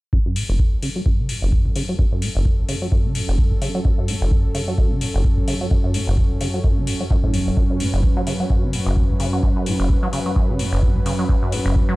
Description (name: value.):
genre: acid house.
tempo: 129 BPM.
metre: 4/4.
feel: swing 56% on 16ths.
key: F# minor.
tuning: A4 = 440 Hz.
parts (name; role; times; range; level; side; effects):
warm analog pad; sustained chords; 0.3-12.0 s; F#2 to B4; -25 LUFS; equal; chorus, sidechain pumping.
acid bass, saw; riff; 0.1-11.9 s; F#1 to F#3; -23 LUFS; equal; tube saturation, lush chorus.
electronic kick drum; drums; 0.1-11.9 s; none; -19 LUFS; equal; none.
electronic hi-hat; drums; 0.4-11.6 s; none; -31 LUFS; left 4 dB; none.
room: little or no reverb.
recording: dark, warm production.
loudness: -17 LUFS.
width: side -20 dB against mid.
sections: 0.1-12.0 A section.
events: filter sweep on acid bass 0.1-12.0.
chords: 0.1 F#m.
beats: | 0.13 0.59 1.06 1.52 | 1.99 2.45 2.92 3.38 | 3.85 4.31 4.78 5.25 | 5.71 6.17 6.64 7.11 | 7.57 8.04 8.50 8.96 | 9.43 9.90 10.36 10.83 | 11.29 11.76.